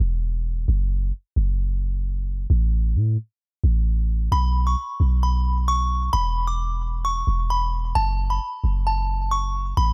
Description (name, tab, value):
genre	hip hop, trap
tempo	132 BPM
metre	4/4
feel	half-time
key	F# minor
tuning	A4 = 440 Hz
part	clean 808-style bass	bass	0.0-9.9 s	E1 to A2	-24 LUFS	equal	none
part	delicate synth tine bell	melody	4.3-9.9 s	A5 to D6	-27 LUFS	equal	chorus, tape echo
room	digital ambience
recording	dark, warm production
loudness	-23 LUFS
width	mono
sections	0.0-9.9 A section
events	break 0.0-4.3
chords	0.0 N.C.; 4.3 Bsus2; 6.1 Bmadd11/E; 8.0 F#m